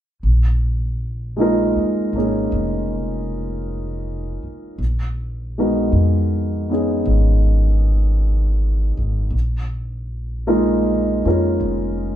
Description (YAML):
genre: jazz ballad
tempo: 53 BPM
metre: 4/4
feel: swing 69% on 8ths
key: unclear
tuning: A4 = 440 Hz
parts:
  - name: upright bass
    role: bass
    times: 0.2-12.2 s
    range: F1 to F2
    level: -19 LUFS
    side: equal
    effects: none
  - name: warm upright piano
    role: accompaniment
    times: 1.4-12.2 s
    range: Ab3 to Bb4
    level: -20 LUFS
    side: equal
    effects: none
room: moderate studio reverb, RT60 0.8 s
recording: band playing live in one room, lossy compression artefacts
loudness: -17 LUFS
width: side -11 dB against mid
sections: 0.2-12.2 A section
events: none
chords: 0.2 Bb7sus4; 4.8 Abm9/Bb; 9.3 Bb7sus4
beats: | 0.24 1.38 2.52 3.66 | 4.79 5.93 7.07 8.20 | 9.34 10.47 11.61